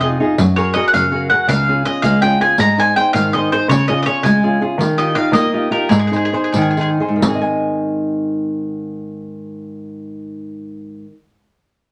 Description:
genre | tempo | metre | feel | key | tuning
italian folk, Italian serenade | 82-110 BPM (dotted quarters) | 6/8 | straight | Ab major | A4 = 438 Hz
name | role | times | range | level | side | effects
bowl-back mandolin | melody | 0.0-6.9 s | Ab4 to Bb5 | -19 LUFS | equal | none
flamenco guitar | accompaniment | 0.0-11.4 s | Ab2 to Ab5 | -20 LUFS | equal | none
dark cello | bass | 0.0-10.9 s | Db2 to Eb3 | -23 LUFS | equal | none
riq | percussion | 0.4-7.5 s | none | -25 LUFS | equal | none
room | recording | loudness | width
wet studio reverb, RT60 0.7 s | none | -16 LUFS | mono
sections
0.0-7.2 A section; 7.2-10.1 B section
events
slowing down 4.8-7.2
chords
0.4 Gbadd9; 1.5 Db; 2.6 Ab; 3.7 Db; 4.8 Ebadd9; 5.9 Ab

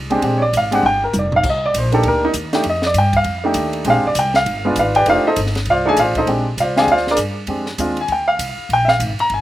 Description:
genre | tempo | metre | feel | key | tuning
jazz piano trio | 198 BPM | 4/4 | swing 62% on 8ths | Bb mixolydian | A4 = 444 Hz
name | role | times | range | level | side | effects
upright bass | bass | 0.0-9.4 s | F1 to G2 | -23 LUFS | equal | none
warm baby grand piano | melody | 0.1-9.4 s | Ab3 to Bb5 | -15 LUFS | equal | none
compact cocktail drum kit | drums | 0.1-9.4 s | crash cymbal, hi-hat, kick drum, ride cymbal, snare drum, toms | -26 LUFS | equal | none
room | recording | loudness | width
little or no reverb | recorded outdoors, with no room sound | -14 LUFS | side -14 dB against mid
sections
0.0-6.3 A section; 6.3-9.4 A section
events
grand piano solo 0.0-9.4; drum fill 0.8-1.4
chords
0.0 Bb13; 1.4 Cm7; 2.6 F13; 3.9 Bb13; 4.5 G7b9; 5.1 F13; 6.3 Bb13

